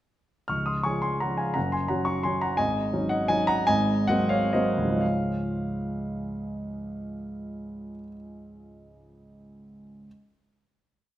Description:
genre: classical, piano waltz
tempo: 121-182 BPM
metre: 3/4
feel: rubato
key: Db major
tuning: A4 = 440 Hz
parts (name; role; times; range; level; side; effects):
- warm grand piano; solo; 0.5-10.1 s; Db1 to F6; -25 LUFS; equal; none
room: moderate recital hall reverb, RT60 1.4 s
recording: none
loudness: -24 LUFS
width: side -13 dB against mid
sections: 0.5-5.0 A section; 5.0-7.9 final chord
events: slowing down 2.1-5.0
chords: 0.5 Db; 1.6 Gb; 2.6 Ab7sus4; 3.7 Ab9; 5.0 Db

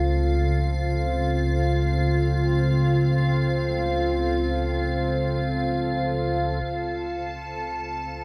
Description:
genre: dark ambient drone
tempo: free time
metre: none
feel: none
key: unclear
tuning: A4 = 439 Hz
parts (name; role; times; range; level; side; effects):
- deep dark ambient pad; sustained chords; 0.0-8.2 s; C4 to C5; -29 LUFS; equal; chorus, built-in reverb
- analog drone; drone; 0.0-8.2 s; C#2 to C#3; -26 LUFS; equal; chorus
- icy glass pad; texture; 0.0-8.2 s; F4 to A5; -32 LUFS; equal; chorus, built-in reverb
room: wet huge ambient reverb, RT60 8.3 s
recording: none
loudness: -24 LUFS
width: mono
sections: 0.0-6.6 A section; 6.6-8.2 B section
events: filter sweep on synth drone 6.6-8.2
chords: 0.0 F

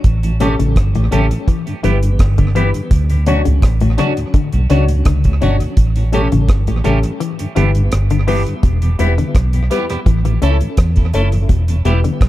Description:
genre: roots reggae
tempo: 84 BPM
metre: 4/4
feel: straight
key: E dorian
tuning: A4 = 443 Hz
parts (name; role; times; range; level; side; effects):
- vintage muted fingered electric bass; bass; 0.0-12.3 s; E1 to E2; -14 LUFS; equal; none
- deep reggae drum kit; drums; 0.0-12.3 s; hi-hat, kick drum, rim click; -16 LUFS; equal; none
- mellow tonewheel organ; accompaniment; 0.2-12.1 s; D2 to E4; -23 LUFS; left 1 dB; slow rotary speaker, tape echo
- clean electric guitar; accompaniment; 0.4-12.0 s; E3 to A4; -25 LUFS; right 4 dB; phaser, tape echo
- semi-hollow electric guitar; arpeggios; 0.4-12.2 s; A2 to E3; -21 LUFS; left 6 dB; spring reverb
- dark baby grand piano; stabs; 0.4-12.0 s; C#4 to C#5; -23 LUFS; left 4 dB; none
room: little or no reverb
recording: echo-heavy mix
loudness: -12 LUFS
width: side -15 dB against mid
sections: 0.0-8.6 A section; 8.6-12.3 B section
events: kick muted 7.2-8.6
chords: 0.0 A7; 1.5 G6; 2.9 Dmaj7; 5.8 A7; 7.2 G6; 8.6 Em; 10.1 A; 11.5 Em

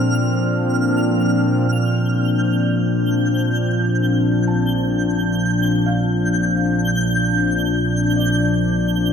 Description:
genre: ambient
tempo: 65 BPM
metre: 4/4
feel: straight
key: Bb major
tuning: A4 = 442 Hz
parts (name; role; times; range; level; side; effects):
- warm analog pad; sustained chords; 0.0-9.1 s; Bb2 to D4; -17 LUFS; left 1 dB; chorus
- felt-muted upright piano; arpeggios; 0.0-9.1 s; D5 to A5; -36 LUFS; left 1 dB; ping-pong delay
- twinkling granular texture; texture; 0.0-9.1 s; F6 to G6; -25 LUFS; right 2 dB; built-in reverb
- warm sub bass; bass; 1.7-9.1 s; Bb1; -36 LUFS; right 1 dB; none
room: wet cathedral reverb, RT60 6.6 s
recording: in a vast, echoing space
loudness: -16 LUFS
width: side -7 dB against mid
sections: 0.0-1.7 A section; 1.7-9.1 B section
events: fade-in on felt piano 1.7-9.1; fade-in on sub bass 1.7-9.1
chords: 0.0 Bb; 1.7 Bb6

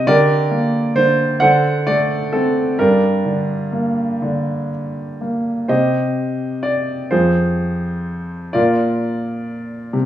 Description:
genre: classical, lyrical solo piano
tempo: 40-46 BPM (dotted quarters)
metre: 6/8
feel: rubato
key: G minor, C minor from 5.7 s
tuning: A4 = 439 Hz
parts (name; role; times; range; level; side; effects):
- warm concert grand piano; solo; 0.0-10.1 s; F2 to F#5; -16 LUFS; equal; none
room: moderate recital hall reverb, RT60 1.5 s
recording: studio reverb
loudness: -16 LUFS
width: side -12 dB against mid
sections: 0.0-5.7 A section; 5.7-10.1 B section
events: none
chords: 0.1 Gm/D; 1.4 D5; 2.8 Gm; 5.7 Cm; 7.1 Fm; 8.5 Bb

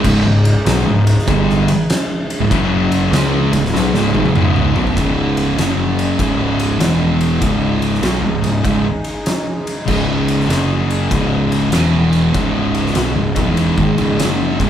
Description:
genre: stoner and doom metal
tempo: 98 BPM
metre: 4/4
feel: swing 66% on 8ths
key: C# minor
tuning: A4 = 440 Hz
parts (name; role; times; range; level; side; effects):
- analog drone; sustained chords; 0.0-14.7 s; C#3 to D#4; -27 LUFS; equal; chorus
- thick fuzz guitar; riff; 0.0-14.7 s; C#2 to C#4; -18 LUFS; left 6 dB; distortion
- thick fuzz guitar; riff; 0.0-14.7 s; C#2 to C#4; -18 LUFS; right 4 dB; distortion
- fuzz picked electric bass; bass; 0.0-14.7 s; C#1 to C#2; -21 LUFS; equal; overdrive
- oversized low-tuned drum kit; drums; 0.0-14.7 s; crash cymbal, kick drum, ride cymbal, snare drum, toms; -20 LUFS; equal; none
room: moderate large studio reverb, RT60 1.1 s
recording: band playing live in one room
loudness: -13 LUFS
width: side -10 dB against mid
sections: 0.0-5.0 A section; 5.0-14.7 B section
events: drum fill 3.7-5.0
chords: 0.0 C#5; 2.5 F#5; 3.1 C#5; 5.6 F#5; 6.2 C#5; 6.8 E5; 7.4 C#5; 10.5 F#5; 11.1 C#5; 11.7 E5; 12.3 C#m

